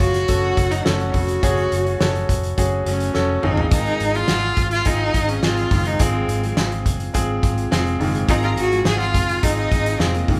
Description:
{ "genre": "piano-driven pop", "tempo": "105 BPM", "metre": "4/4", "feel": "straight", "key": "unclear", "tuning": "A4 = 440 Hz", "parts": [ { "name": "rich cello", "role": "melody", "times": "0.0-10.4 s", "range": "Bb3 to Ab4", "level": "-25 LUFS", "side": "equal", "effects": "none" }, { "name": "warm studio violin section", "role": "second line", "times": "0.0-10.2 s", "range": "Eb4 to Bb5", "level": "-34 LUFS", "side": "equal", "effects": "none" }, { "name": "bright concert grand piano", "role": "accompaniment", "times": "0.0-10.4 s", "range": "Ab2 to Db5", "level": "-27 LUFS", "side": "equal", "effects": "none" }, { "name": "fingerpicked steel-string acoustic guitar", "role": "riff", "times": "0.0-10.4 s", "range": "Gb2 to Gb4", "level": "-32 LUFS", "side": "equal", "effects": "none" }, { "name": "vintage muted fingered electric bass", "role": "bass", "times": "0.0-10.4 s", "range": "F1 to Ab1", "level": "-26 LUFS", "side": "equal", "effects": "none" }, { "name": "loose indie drum kit", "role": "drums", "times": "0.0-10.4 s", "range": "hi-hat, kick drum, snare drum, toms", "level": "-24 LUFS", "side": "equal", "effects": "none" } ], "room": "moderate large studio reverb, RT60 1.2 s", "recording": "band playing live in one room", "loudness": "-19 LUFS", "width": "mono", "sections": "0.0-10.4 A section", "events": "drum fill 3.1-3.7", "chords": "0.0 Gbm; 3.4 Ab6" }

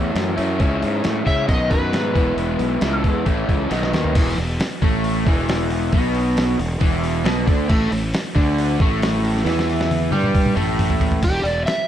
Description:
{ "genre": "blues rock power trio and southern rock", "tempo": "136 BPM", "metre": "4/4", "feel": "straight", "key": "E major", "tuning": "A4 = 440 Hz", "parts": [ { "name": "crunchy overdriven guitar", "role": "riff", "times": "0.0-11.2 s", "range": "E2 to G4", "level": "-22 LUFS", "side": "equal", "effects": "spring reverb" }, { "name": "fuzz fingered electric bass", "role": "bass", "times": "0.0-11.6 s", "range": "E1 to C#3", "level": "-22 LUFS", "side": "equal", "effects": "overdrive" }, { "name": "lo-fi sampler-style drum kit", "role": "drums", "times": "0.2-11.8 s", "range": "crash cymbal, hi-hat, kick drum, snare drum, toms", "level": "-21 LUFS", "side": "equal", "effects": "none" }, { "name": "overdriven slide guitar", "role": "melody", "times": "1.3-3.7, 11.2-11.9 s", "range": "G4 to E5", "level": "-24 LUFS", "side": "equal", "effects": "none" } ], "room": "light reverb", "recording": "none", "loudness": "-17 LUFS", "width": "side -10 dB against mid", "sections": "0.0-4.2 A section; 4.2-11.2 B section", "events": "drum fill 3.7-4.2, 9.5-11.2", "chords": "0.0 A; 0.6 C#m; 1.5 B; 2.2 E; 3.3 A; 3.7 B; 4.2 E5; 7.7 A5; 11.2 E5" }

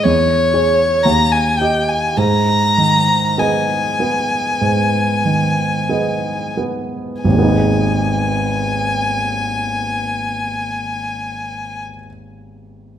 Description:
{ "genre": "classical, romantic duo for violin and grand piano", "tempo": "42-62 BPM", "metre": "4/4", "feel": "rubato", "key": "G# minor", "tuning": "A4 = 439 Hz", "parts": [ { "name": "rich violin", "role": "melody", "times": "0.0-11.8 s", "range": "C#5 to A#5", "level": "-18 LUFS", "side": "left 2 dB", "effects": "none" }, { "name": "clear grand piano", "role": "accompaniment", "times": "0.0-13.0 s", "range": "G#1 to D#5", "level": "-17 LUFS", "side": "right 2 dB", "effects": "none" } ], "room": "moderate recital hall reverb, RT60 1.6 s", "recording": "none", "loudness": "-14 LUFS", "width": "side -10 dB against mid", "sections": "0.0-7.2 A section; 7.2-12.5 B section", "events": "slowing down 0.0-7.2", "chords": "0.0 C#m/E; 1.0 D#; 2.2 G#m" }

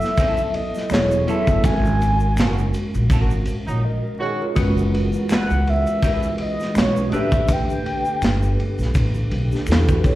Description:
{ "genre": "R&B, neo-soul", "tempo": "82 BPM", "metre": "4/4", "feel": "swing 56% on 16ths", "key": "unclear", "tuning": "A4 = 440 Hz", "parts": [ { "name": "mellow horn-like synth lead", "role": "melody", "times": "0.0-8.6 s", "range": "C#5 to G#5", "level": "-23 LUFS", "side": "left 1 dB", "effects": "chorus, slapback echo" }, { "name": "mellow tine electric piano", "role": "accompaniment", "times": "0.0-10.2 s", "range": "F#3 to D#5", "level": "-24 LUFS", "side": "equal", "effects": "medium stereo tremolo, slapback echo" }, { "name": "crunchy breakbeat drum kit", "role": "drums", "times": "0.0-10.2 s", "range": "handclaps, hi-hat, kick drum, ride cymbal, snare drum", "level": "-22 LUFS", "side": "equal", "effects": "none" }, { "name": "egg shaker and finger snaps", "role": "percussion", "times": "0.0-10.2 s", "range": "none", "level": "-39 LUFS", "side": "left 2 dB", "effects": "none" }, { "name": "electric guitar through a small old amp", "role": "second line", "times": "0.2-7.3 s", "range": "C#4 to B4", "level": "-30 LUFS", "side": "right 4 dB", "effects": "slapback echo" }, { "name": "upright bass", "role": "bass", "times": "0.9-10.0 s", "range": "E1 to E2", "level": "-21 LUFS", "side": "equal", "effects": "none" }, { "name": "mellow horn section", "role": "stabs", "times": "3.7-4.4 s", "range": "A#2 to F#4", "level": "-27 LUFS", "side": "right 2 dB", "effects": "slapback echo" }, { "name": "percussive tonewheel organ", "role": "sustained chords", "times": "4.6-10.2 s", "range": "D3 to G4", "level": "-30 LUFS", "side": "equal", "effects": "chorus vibrato, slow rotary speaker" } ], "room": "light reverb", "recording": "live gig heard through the venue's PA, recital hall reverb, vinyl crackle", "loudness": "-17 LUFS", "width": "side -16 dB against mid", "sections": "0.0-10.2 A section", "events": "band accent 1.6-4.6; break 3.8-4.6", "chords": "0.0 B9sus4; 1.6 G#9sus4; 4.6 F#9sus4; 7.1 A9sus4" }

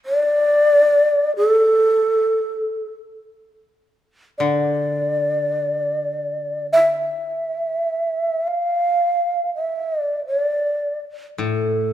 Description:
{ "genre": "japanese traditional, Japanese chamber music", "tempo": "free time", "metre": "none", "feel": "none", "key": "unclear", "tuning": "A4 = 439 Hz", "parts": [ { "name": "breathy mellow long shakuhachi", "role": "melody", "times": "0.1-11.9 s", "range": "A4 to F5", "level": "-18 LUFS", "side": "equal", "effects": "none" }, { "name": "koto", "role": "accompaniment", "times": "4.4-7.1, 11.4-11.9 s", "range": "A2 to D3", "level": "-25 LUFS", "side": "left 3 dB", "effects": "none" } ], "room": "moderate recital hall reverb, RT60 1.9 s", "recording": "minimal, uncompressed stereo recording", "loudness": "-17 LUFS", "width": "side -12 dB against mid", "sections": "0.0-3.1 A section; 3.1-11.9 A section", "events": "none", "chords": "none" }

